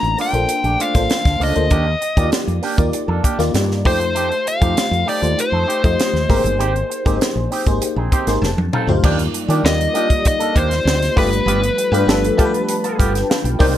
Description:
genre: polished 1980s jazz-funk pop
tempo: 98 BPM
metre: 4/4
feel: straight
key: unclear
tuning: A4 = 440 Hz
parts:
  - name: nasal lead guitar with a parked wah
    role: melody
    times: 0.0-13.0 s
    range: B4 to Bb5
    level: -20 LUFS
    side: left 2 dB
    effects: overdrive, plate reverb
  - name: FM electric piano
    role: accompaniment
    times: 0.0-13.8 s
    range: A3 to C6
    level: -21 LUFS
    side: left 2 dB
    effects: ensemble chorus, plate reverb
  - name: electric guitar with an envelope filter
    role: riff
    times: 0.0-13.8 s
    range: A3 to A4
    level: -25 LUFS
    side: right 4 dB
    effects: wide subtle chorus
  - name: woody fretless electric bass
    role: bass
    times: 0.0-13.8 s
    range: F1 to Eb3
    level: -20 LUFS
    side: equal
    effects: none
  - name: crisp fusion drum kit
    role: drums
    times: 0.0-13.7 s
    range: crash cymbal, hi-hat, kick drum, snare drum, toms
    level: -20 LUFS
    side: equal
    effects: none
  - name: hollow soft pad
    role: sustained chords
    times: 9.0-13.8 s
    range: C3 to G4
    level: -29 LUFS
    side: right 2 dB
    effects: none
room: moderate booth ambience, RT60 0.2 s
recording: none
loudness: -15 LUFS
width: side -12 dB against mid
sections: 0.0-9.0 A section; 9.0-13.8 B section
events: FM electric piano fill 7.8-9.0, 12.1-13.8; drum fill 8.4-9.0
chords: 0.0 Bbmaj7; 1.7 Ebmaj7; 3.9 F9; 6.3 Abmaj7; 8.4 F7; 9.0 Ebmaj7; 11.2 G7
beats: 0.49 1.10 | 1.71 2.32 2.93 3.54 | 4.16 4.77 5.38 5.99 | 6.60 7.21 7.82 8.43 | 9.04 9.64 10.25 10.86 | 11.47 12.08 12.69 13.30

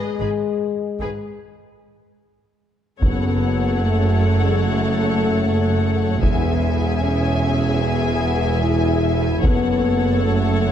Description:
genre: cinematic, epic orchestral film score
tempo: 75 BPM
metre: 4/4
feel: straight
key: F# minor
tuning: A4 = 439 Hz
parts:
  - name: warm symphonic violin section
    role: melody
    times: 0.0-10.7 s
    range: B4 to G#5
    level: -31 LUFS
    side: left 6 dB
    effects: none
  - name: rich chamber violin section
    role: second line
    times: 0.0-10.7 s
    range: G#4 to E5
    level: -30 LUFS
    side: left 5 dB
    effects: none
  - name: warm symphonic viola section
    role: accompaniment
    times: 0.0-10.7 s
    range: G#4 to A4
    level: -30 LUFS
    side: right 1 dB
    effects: none
  - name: mellow French horn section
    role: sustained chords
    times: 0.0-10.7 s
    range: G#3 to E4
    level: -22 LUFS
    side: left 4 dB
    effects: none
  - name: clear studio cello section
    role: bass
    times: 0.2-10.7 s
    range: E2 to G#2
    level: -25 LUFS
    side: right 3 dB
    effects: none
  - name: rich symphonic double bass section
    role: bass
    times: 0.2-10.7 s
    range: E1 to G#1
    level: -23 LUFS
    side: right 2 dB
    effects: none
  - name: mellow tuba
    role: bass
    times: 3.0-10.7 s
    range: E1 to F#1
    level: -26 LUFS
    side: right 3 dB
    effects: none
  - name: taiko ensemble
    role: drums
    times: 3.0-10.2 s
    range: none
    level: -21 LUFS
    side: equal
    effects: none
room: moderate concert hall reverb, RT60 2.2 s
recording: dark, warm production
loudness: -17 LUFS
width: side -9 dB against mid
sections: 0.0-3.0 A section; 3.0-10.7 A section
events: break 1.4-3.0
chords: 0.0 N.C.; 3.0 F#m; 6.2 E; 9.4 F#m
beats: 0.61 1.41 2.21 | 3.01 3.81 4.62 5.42 | 6.22 7.02 7.82 8.63 | 9.43 10.23

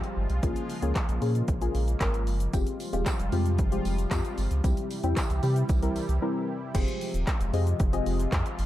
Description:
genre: dance-pop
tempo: 114 BPM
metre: 4/4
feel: straight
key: F minor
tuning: A4 = 440 Hz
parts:
  - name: deep mellow chord stab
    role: accompaniment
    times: 0.0-8.4 s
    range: G3 to Eb5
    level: -32 LUFS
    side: left 3 dB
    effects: chorus, sidechain pumping
  - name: sweeping resonant pad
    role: sustained chords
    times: 0.0-8.7 s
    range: C3 to G4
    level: -35 LUFS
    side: right 1 dB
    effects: chorus, sidechain pumping
  - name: deep house drum kit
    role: drums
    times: 0.0-8.7 s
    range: crash cymbal, handclaps, hi-hat, kick drum, shaker, snare drum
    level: -29 LUFS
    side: equal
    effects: none
  - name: warm sub bass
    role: bass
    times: 0.2-8.7 s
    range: Eb1 to C3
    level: -27 LUFS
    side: equal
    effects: sidechain pumping
  - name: tambourine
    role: percussion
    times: 2.5-6.1 s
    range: none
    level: -48 LUFS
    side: right 10 dB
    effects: none
room: little or no reverb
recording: dark, warm production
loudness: -25 LUFS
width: side -14 dB against mid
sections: 0.0-6.7 A section; 6.7-8.7 B section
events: break 6.2-6.7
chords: 0.4 Bbm7; 2.5 Fmadd9; 4.6 C; 6.7 Fmadd9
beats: | 0.43 0.96 1.48 2.01 | 2.54 3.06 3.59 4.11 | 4.64 5.17 5.69 6.22 | 6.75 7.27 7.80 8.32

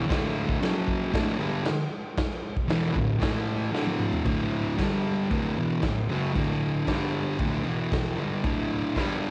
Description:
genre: garage rock duo or trio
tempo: 115 BPM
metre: 4/4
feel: straight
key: D major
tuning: A4 = 439 Hz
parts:
  - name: thick fuzz guitar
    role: riff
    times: 0.0-9.3 s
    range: D2 to A3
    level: -28 LUFS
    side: equal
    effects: distortion
  - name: raw garage drum kit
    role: drums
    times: 0.1-9.1 s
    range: crash cymbal, kick drum, snare drum, toms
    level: -32 LUFS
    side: equal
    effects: cassette tape
room: light reverb, studio ambience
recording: home recording on cassette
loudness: -27 LUFS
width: mono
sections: 0.0-4.3 A section; 4.3-9.3 B section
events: drum fill 3.7-4.3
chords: 0.0 D5; 0.6 F#5; 1.1 D5; 3.2 A5; 3.7 D5; 4.8 G5; 5.3 D; 6.9 G5; 7.4 D5; 7.7 E5; 8.2 D5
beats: | 0.10 0.62 1.14 1.66 | 2.18 2.70 3.22 3.74 | 4.26 4.78 5.31 5.83 | 6.35 6.87 7.39 7.92 | 8.44 8.96

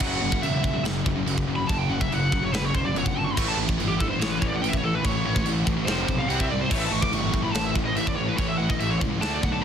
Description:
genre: heavy metal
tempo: 143 BPM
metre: 4/4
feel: straight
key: unclear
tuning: A4 = 440 Hz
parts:
  - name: high-gain lead guitar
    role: melody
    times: 0.0-9.6 s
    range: G4 to D6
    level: -29 LUFS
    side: right 1 dB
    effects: distortion
  - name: biting overdriven guitar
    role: riff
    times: 0.0-9.6 s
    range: F2 to D4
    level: -33 LUFS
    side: equal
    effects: none
  - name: heavy high-gain guitar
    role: riff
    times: 0.0-9.6 s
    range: F2 to D4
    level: -30 LUFS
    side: left 9 dB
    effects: distortion
  - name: high-gain distorted guitar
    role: riff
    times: 0.0-9.6 s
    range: F2 to D4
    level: -32 LUFS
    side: right 9 dB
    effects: distortion
  - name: fuzz picked electric bass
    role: bass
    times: 0.0-9.6 s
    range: E1 to D2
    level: -30 LUFS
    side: equal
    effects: overdrive
  - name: tight metal drum kit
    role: drums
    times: 0.0-9.5 s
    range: china cymbal, crash cymbal, kick drum, snare drum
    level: -27 LUFS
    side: equal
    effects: soft clipping on kick
room: small room ambience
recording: dense, heavily limited modern master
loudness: -22 LUFS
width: side -8 dB against mid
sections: 0.0-9.6 A section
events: lead electric guitar solo 0.0-9.6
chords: 0.0 F#5; 3.4 A; 5.9 F5; 6.3 C5; 6.7 A; 9.2 D5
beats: | 0.01 0.43 0.85 1.27 | 1.69 2.10 2.52 2.94 | 3.36 3.78 4.20 4.62 | 5.03 5.45 5.87 6.29 | 6.71 7.12 7.54 7.96 | 8.38 8.80 9.22 9.63

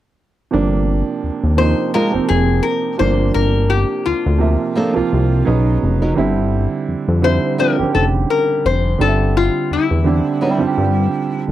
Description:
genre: R&B, neo-soul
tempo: 85 BPM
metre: 4/4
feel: swing 55% on 16ths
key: unclear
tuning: A4 = 437 Hz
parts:
  - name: clear upright piano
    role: accompaniment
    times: 0.5-11.5 s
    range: C3 to E5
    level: -19 LUFS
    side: right 6 dB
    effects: none
  - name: fat analog bass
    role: bass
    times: 0.5-11.5 s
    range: F1 to G2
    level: -16 LUFS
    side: left 1 dB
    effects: none
  - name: metal-body resonator slide guitar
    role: melody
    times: 1.6-11.4 s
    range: E4 to C5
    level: -19 LUFS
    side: left 6 dB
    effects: slapback echo
  - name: flamenco guitar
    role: second line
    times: 1.9-10.6 s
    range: F3 to Bb4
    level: -18 LUFS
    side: right 2 dB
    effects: none
room: light reverb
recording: dry, close 1970s-style studio recording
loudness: -14 LUFS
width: side -13 dB against mid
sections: 0.5-11.5 A section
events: none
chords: 0.5 Ab69/G; 3.0 Gm7; 5.5 Badd9; 6.2 Fmaj7sus2; 9.0 Am7/G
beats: | 0.52 1.22 1.93 2.63 | 3.34 4.04 4.75 5.46 | 6.16 6.87 7.57 8.28 | 8.99 9.69 10.40 11.10

